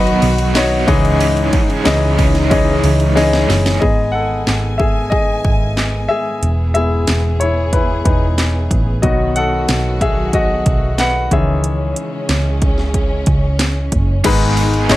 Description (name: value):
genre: piano-driven pop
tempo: 92 BPM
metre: 4/4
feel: straight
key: unclear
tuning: A4 = 442 Hz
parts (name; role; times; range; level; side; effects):
- clear baby grand piano; accompaniment; 0.0-15.0 s; G#2 to F#5; -17 LUFS; left 2 dB; none
- warm studio string section; sustained chords; 0.0-15.0 s; G#2 to G#5; -23 LUFS; right 1 dB; none
- overdriven electric guitar; riff; 0.0-3.8, 14.2-15.0 s; G#2 to B4; -22 LUFS; right 4 dB; tremolo
- hollow-body short-scale picked electric bass; bass; 0.0-15.0 s; E1 to C#2; -18 LUFS; equal; none
- house drum kit; drums; 0.1-15.0 s; crash cymbal, handclaps, hi-hat, kick drum, ride cymbal, snare drum; -18 LUFS; equal; none
room: light reverb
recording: none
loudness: -13 LUFS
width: side -16 dB against mid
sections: 0.0-3.8 A section; 3.8-14.2 B section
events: drum fill 3.2-3.8; grand piano solo 3.8-14.2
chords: 0.0 B; 0.9 C#madd9; 3.8 G#m; 6.4 E; 9.0 B; 11.3 C#madd9; 14.2 G#m